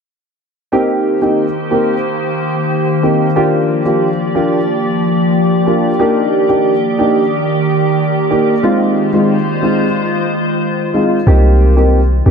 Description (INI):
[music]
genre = dancehall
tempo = 91 BPM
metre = 4/4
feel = straight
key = unclear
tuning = A4 = 437 Hz
[part]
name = dark concert grand piano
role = accompaniment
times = 0.7-12.3 s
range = Ab3 to G4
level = -14 LUFS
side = equal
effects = lush chorus
[part]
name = glassy FM pad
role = sustained chords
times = 1.3-11.2 s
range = Eb3 to D5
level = -15 LUFS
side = equal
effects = ensemble chorus, built-in reverb
[part]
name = warm 808-style bass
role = bass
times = 11.3-12.3 s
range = Bb1 to C2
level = -9 LUFS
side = equal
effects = none
[sound]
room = moderate plate reverb, RT60 3.5 s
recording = dreamy mix soaked in reverb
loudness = -11 LUFS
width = side -6 dB against mid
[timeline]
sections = 0.7-11.3 A section; 11.3-12.3 B section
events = none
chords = 0.7 Cm7; 3.4 Gm7; 6.0 Ebmaj7; 8.6 Fm7; 11.3 Cm7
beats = | 0.72 1.38 2.04 2.70 | 3.36 4.02 4.68 5.34 | 6.00 6.66 7.31 7.97 | 8.63 9.29 9.95 10.61 | 11.27 11.93